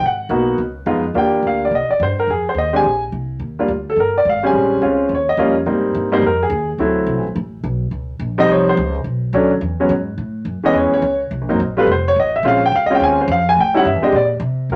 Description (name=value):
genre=jazz piano trio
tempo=213 BPM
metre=4/4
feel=swing 62% on 8ths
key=Eb major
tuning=A4 = 440 Hz
part: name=warm concert grand piano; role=melody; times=0.0-14.8 s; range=E3 to Ab5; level=-17 LUFS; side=equal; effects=none
part: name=upright bass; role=bass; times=0.0-14.8 s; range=F1 to C3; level=-26 LUFS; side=equal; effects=none
room=wet studio reverb, RT60 0.6 s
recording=none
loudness=-17 LUFS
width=mono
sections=0.0-5.7 A section; 5.7-14.7 B section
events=none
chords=0.0 Abm7; 0.6 Db9; 1.2 Ebmaj9; 1.7 C5; 2.3 Fm7; 2.8 Bbsus2; 3.4 Ebmaj9; 4.5 Bbm7; 5.1 Eb9; 5.7 Abmaj7; 6.8 D9; 7.9 Dbmaj9#11; 9.1 Bm7; 9.6 E; 10.2 Amaj7; 11.3 C7(b5, no3); 11.9 F; 12.4 Bbm7; 13.6 A7#11; 14.1 Bbsus2